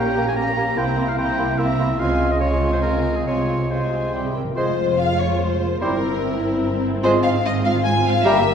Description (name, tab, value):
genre	quick classical-period movement for symphony orchestra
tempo	146 BPM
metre	3/4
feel	straight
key	F minor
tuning	A4 = 440 Hz
part	warm symphonic violin section	melody	0.0-8.5 s	Bb4 to Bb5	-32 LUFS	left 1 dB	none
part	bright oboe	second line	0.0-8.4 s	Ab4 to Bb5	-27 LUFS	right 1 dB	none
part	concert flute	second line	0.0-8.4 s	Bb5 to C6	-31 LUFS	right 1 dB	none
part	rich chamber violin section	second line	0.0-8.5 s	E4 to Ab5	-25 LUFS	left 3 dB	none
part	warm clarinet	second line	0.0-8.4 s	E4 to Bb4	-29 LUFS	left 1 dB	none
part	mellow bassoon	accompaniment	0.0-8.4 s	G3 to Bb3	-27 LUFS	equal	none
part	rich studio viola section	accompaniment	0.0-8.5 s	Ab3 to Bb4	-28 LUFS	right 1 dB	none
part	mellow French horn section	sustained chords	0.0-8.5 s	G3 to G4	-26 LUFS	left 1 dB	none
part	rich chamber double bass section	bass	0.0-8.5 s	F1 to Db2	-26 LUFS	right 2 dB	none
part	warm chamber cello section	bass	0.0-8.5 s	F2 to Db3	-27 LUFS	right 1 dB	none
part	timpani	percussion	4.1-4.5 s	C3	-34 LUFS	left 2 dB	none
room	wet scoring stage reverb, RT60 1.6 s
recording	heard from further back in the room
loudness	-18 LUFS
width	side -7 dB against mid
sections	0.0-4.6 A section; 4.6-8.5 B section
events	timpani fill 4.1-4.6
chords	0.0 Gdim/Bb; 0.8 C7; 2.0 Dbmaj7; 3.3 Fm/C; 4.1 C; 4.6 Fm; 5.8 C7/G; 7.0 Fm/Ab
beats	0.37 | 0.78 1.18 1.59 | 2.00 2.42 2.84 | 3.27 3.71 4.14 | 4.57 4.98 5.40 | 5.81 6.22 6.63 | 7.04 7.45 7.85 | 8.26